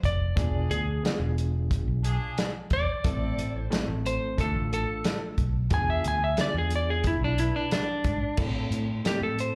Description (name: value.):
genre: straight-eighth soul blues.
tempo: 90 BPM.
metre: 4/4.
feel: straight.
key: A minor.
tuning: A4 = 440 Hz.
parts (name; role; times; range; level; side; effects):
fingered electric bass; bass; 0.0-9.5 s; E1 to A2; -30 LUFS; equal; none.
warm soul drum kit; drums; 0.0-9.5 s; crash cymbal, hi-hat, kick drum, snare drum; -32 LUFS; equal; none.
clean lap steel guitar; melody; 0.1-9.6 s; D4 to G#5; -32 LUFS; equal; slapback echo.
overdriven reed electric piano; accompaniment; 0.4-9.6 s; A3 to A4; -38 LUFS; equal; fast tremolo, slapback echo.
mellow horn section; sustained chords; 0.4-7.9 s; C4 to B4; -43 LUFS; equal; none.
room: small room ambience.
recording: live gig heard through the venue's PA, club reverb.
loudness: -27 LUFS.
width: mono.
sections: 0.0-8.4 A section; 8.4-9.6 B section.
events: electric slide guitar solo 0.0-8.4.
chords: 0.4 E7b9; 3.0 Am; 4.4 Dm; 5.7 E7b9; 8.4 Am.